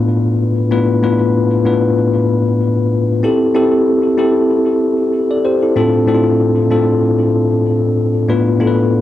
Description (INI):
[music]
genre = pop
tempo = 95 BPM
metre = 4/4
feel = swing 55% on 16ths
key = unclear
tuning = A4 = 438 Hz
[part]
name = bell-like tine electric piano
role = solo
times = 0.0-9.0 s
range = A2 to D5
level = -12 LUFS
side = left 1 dB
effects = fast stereo tremolo, tape echo
[sound]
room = wet studio reverb, RT60 0.6 s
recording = home recording on cassette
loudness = -12 LUFS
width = side -13 dB against mid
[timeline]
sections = 0.0-9.0 A section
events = none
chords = 0.0 Bdim/A; 3.2 Am7; 5.8 Dm7/A; 8.3 Bdim/A